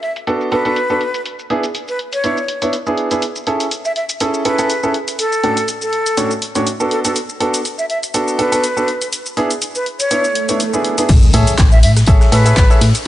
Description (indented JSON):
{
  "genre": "piano house",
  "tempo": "122 BPM",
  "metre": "4/4",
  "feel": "swing 55% on 16ths",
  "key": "A major",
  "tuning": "A4 = 443 Hz",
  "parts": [
    { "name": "breathy jazz flute", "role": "melody", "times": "0.0-12.9 s", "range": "A4 to E5", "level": "-20 LUFS", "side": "equal", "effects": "none" },
    { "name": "punchy analog drum machine", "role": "drums", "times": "0.0-13.0 s", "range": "crash cymbal, handclaps, hi-hat, rim click, shaker", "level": "-22 LUFS", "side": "left 1 dB", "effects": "low-pass filter on hats, low-pass filter on cymbals, low-pass filter on perc, low-pass filter on snare" },
    { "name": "bright upright piano", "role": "riff", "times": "0.3-12.8 s", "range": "A2 to E5", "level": "-18 LUFS", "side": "right 1 dB", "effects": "sidechain pumping, digital delay" },
    { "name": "swell and impact", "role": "sound effects", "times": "10.3-13.1 s", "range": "none", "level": "-20 LUFS", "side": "equal", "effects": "none" },
    { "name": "solid FM bass", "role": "bass", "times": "11.1-12.9 s", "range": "A1 to A2", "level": "-13 LUFS", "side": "equal", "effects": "sidechain pumping" },
    { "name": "electronic kick drum", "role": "drums", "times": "11.1-12.7 s", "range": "none", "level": "-11 LUFS", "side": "equal", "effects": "none" },
    { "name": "huge arena drum kit", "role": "drums", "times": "11.1-12.9 s", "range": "hi-hat, snare drum, tambourine", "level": "-27 LUFS", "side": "left 1 dB", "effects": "high-pass filter on hats, high-pass filter on snare, high-pass filter on perc, high-pass filter on room" }
  ],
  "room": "light reverb, studio reverb",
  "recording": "nothing above 10.4 kHz",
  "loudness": "-13 LUFS",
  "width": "side -14 dB against mid",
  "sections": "0.0-11.1 A section; 11.1-13.1 B section",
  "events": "swell 10.3-11.1; drop 11.1-13.1; impact 11.1-13.1",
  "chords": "0.0 Bm7; 1.3 E7; 3.2 Amaj7; 4.9 Dmaj7/A; 6.9 Bm7; 9.1 E7; 11.1 Amaj7",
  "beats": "0.27 0.76 | 1.25 1.75 2.24 2.73 | 3.22 3.71 4.21 4.70 | 5.19 5.68 6.17 6.67 | 7.16 7.65 8.14 8.63 | 9.12 9.62 10.11 10.60 | 11.09 11.58 12.07 12.57 | 13.06"
}